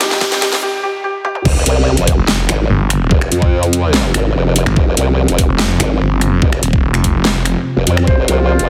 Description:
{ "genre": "heavy wobble dubstep", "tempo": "145 BPM", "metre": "4/4", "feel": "half-time", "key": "unclear", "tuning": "A4 = 441 Hz", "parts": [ { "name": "felt-muted upright piano", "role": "melody", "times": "0.0-1.4, 8.1-8.7 s", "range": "G4 to C5", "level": "-22 LUFS", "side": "equal", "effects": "digital delay" }, { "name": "lush unison pad", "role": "sustained chords", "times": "0.0-8.7 s", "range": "C2 to G4", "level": "-26 LUFS", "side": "equal", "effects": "chorus, sidechain pumping" }, { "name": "dubstep drum kit", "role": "drums", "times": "0.0-8.7 s", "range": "crash cymbal, finger snaps, hi-hat, snare drum, toms", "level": "-20 LUFS", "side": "equal", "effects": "high-pass filter on snare, high-pass filter on hats, high-pass filter on toms, high-pass filter on cymbals" }, { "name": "riser and sub drop", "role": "sound effects", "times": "0.0-3.1 s", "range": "none", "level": "-26 LUFS", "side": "equal", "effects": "none" }, { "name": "electronic kick drum", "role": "drums", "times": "0.2-8.2 s", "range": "none", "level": "-16 LUFS", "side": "equal", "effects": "none" }, { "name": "formant-sweep wobble bass", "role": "bass", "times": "1.5-8.7 s", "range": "F1 to F2", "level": "-16 LUFS", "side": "equal", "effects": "chorus, overdrive" }, { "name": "snarling distorted saw bass", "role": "bass", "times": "2.2-7.5 s", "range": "Eb1 to Ab1", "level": "-17 LUFS", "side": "equal", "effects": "distortion, overdrive" }, { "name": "mellow brass ensemble", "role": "stabs", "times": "8.3-8.7 s", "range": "F3 to F4", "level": "-21 LUFS", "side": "equal", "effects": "none" } ], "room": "light reverb", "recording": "heavily compressed radio sound, multiband compression, high-pass filter", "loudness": "-14 LUFS", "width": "mono", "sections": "0.0-1.5 A section; 1.5-8.7 B section", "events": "build-up 0.0-1.5; drum fill 0.0-0.6, 1.2; riser 0.0-0.6; filter sweep on felt piano 0.0-1.5; filter sweep 0.0-1.5; break 0.6-1.5; drop 1.5-8.7; impact 1.5-3.1", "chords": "0.0 Cm; 1.5 F5" }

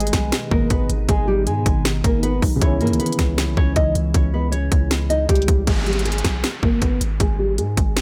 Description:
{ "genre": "hip hop, trap", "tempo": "157 BPM", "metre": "4/4", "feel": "half-time", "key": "unclear", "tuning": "A4 = 440 Hz", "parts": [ { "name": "nylon-string guitar", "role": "melody", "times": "0.0-7.9 s", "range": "G3 to D#5", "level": "-26 LUFS", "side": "equal", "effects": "low-pass filter, delay" }, { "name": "dark concert grand piano", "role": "accompaniment", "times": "0.0-5.7 s", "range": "C#3 to D#5", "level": "-31 LUFS", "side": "equal", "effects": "low-pass filter" }, { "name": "glassy FM pad", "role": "sustained chords", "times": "0.3-5.6 s", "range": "B2 to E4", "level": "-32 LUFS", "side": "equal", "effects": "ensemble chorus, built-in reverb, phaser" }, { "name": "long sustained 808-style bass", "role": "bass", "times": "0.0-8.0 s", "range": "G#1 to G#2", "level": "-24 LUFS", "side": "equal", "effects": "none" }, { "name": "trap drum kit", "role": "drums", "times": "0.0-8.0 s", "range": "hi-hat, kick drum, snare drum", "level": "-22 LUFS", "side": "equal", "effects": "none" }, { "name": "downlifter", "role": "sound effects", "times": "5.7-8.0 s", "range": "none", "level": "-33 LUFS", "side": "equal", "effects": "none" } ], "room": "little or no reverb", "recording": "none", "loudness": "-19 LUFS", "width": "mono", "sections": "0.0-5.7 A section; 5.7-8.0 B section", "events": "filter sweep 5.7-8.0", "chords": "0.0 G#m; 2.6 C#m; 5.7 N.C." }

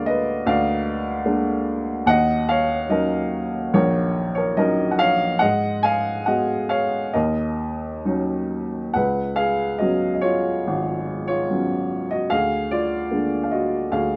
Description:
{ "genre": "classical, lyrical solo piano", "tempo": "63-76 BPM", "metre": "4/4", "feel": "rubato", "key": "Eb minor", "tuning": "A4 = 440 Hz", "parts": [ { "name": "clear upright piano", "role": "solo", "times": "0.0-14.2 s", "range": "Ab1 to Ab5", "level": "-22 LUFS", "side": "equal", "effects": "none" } ], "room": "light reverb", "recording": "none", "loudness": "-22 LUFS", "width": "mono", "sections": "0.0-9.0 A section; 9.0-14.2 A section", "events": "none", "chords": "0.0 Bb7/D; 2.1 Ebm7; 5.4 Abm7; 7.1 Ebm7; 9.0 Db7sus4; 12.3 Bb7/D" }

